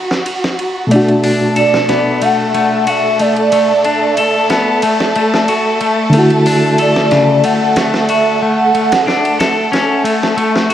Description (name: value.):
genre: trip hop.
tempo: 92 BPM.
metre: 4/4.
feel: straight.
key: B minor.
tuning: A4 = 441 Hz.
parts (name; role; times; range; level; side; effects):
reed electric piano; accompaniment; 0.0-10.7 s; B2 to D5; -14 LUFS; equal; tremolo.
clear studio violin section; sustained chords; 0.0-10.7 s; A3 to A4; -17 LUFS; equal; vintage 12-bit sampler grit.
dusty soul sampler-style drum kit; drums; 0.1-10.7 s; hi-hat, ride cymbal, snare drum; -20 LUFS; right 1 dB; high-pass filter on cymbals, studio reverb, high-pass filter on hats, high-pass filter on snare.
clean electric guitar; arpeggios; 0.9-10.7 s; C#3 to A4; -16 LUFS; left 3 dB; tape echo.
pure breathy sine lead; melody; 1.6-9.7 s; D5 to F#5; -15 LUFS; right 1 dB; phaser, analog chorus, tape echo.
room: moderate lush hall reverb, RT60 2.0 s, digital ambience.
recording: dark, warm production, vinyl crackle.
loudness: -10 LUFS.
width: side -10 dB against mid.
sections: 0.0-10.7 A section.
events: none.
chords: 0.0 Dmaj7; 0.9 Bm7; 6.1 Dmaj7.